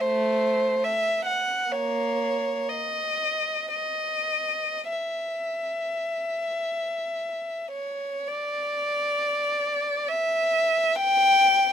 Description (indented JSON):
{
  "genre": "classical, free, expressive piece for unaccompanied violin",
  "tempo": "free time",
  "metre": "none",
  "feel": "none",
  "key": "unclear",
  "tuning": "A4 = 440 Hz",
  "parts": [
    { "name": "warm violin", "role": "solo", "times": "0.0-11.7 s", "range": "A3 to G5", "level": "-23 LUFS", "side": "equal", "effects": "none" }
  ],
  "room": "little or no reverb",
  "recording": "close, detailed microphones",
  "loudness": "-23 LUFS",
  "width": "side -8 dB against mid",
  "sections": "0.0-8.3 A section; 8.3-11.7 B section",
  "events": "none",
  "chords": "none"
}